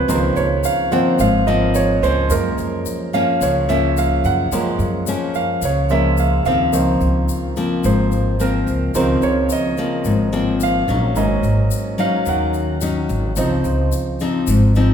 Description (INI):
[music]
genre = bossa nova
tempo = 108 BPM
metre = 4/4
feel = straight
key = Db major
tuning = A4 = 439 Hz
[part]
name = clear concert grand piano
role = accompaniment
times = 0.0-14.9 s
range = Eb3 to Gb5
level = -20 LUFS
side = right 4 dB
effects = none
[part]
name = nylon-string guitar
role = accompaniment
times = 0.0-14.9 s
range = Gb2 to Eb4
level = -20 LUFS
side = left 3 dB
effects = none
[part]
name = upright bass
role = bass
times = 0.0-14.9 s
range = Ab1 to Gb2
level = -20 LUFS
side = equal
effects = none
[part]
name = egg shaker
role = percussion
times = 0.1-14.9 s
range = none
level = -32 LUFS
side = left 8 dB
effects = none
[sound]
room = wet recital hall reverb, RT60 1.5 s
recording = recorded in a church or concert hall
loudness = -15 LUFS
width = side -8 dB against mid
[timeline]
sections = 0.0-14.9 A section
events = grand piano solo 0.0-14.9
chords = 0.0 Dbmaj13; 2.3 Gbmaj7; 6.7 Dbmaj13; 11.2 Ab7sus4; 13.4 Dbmaj9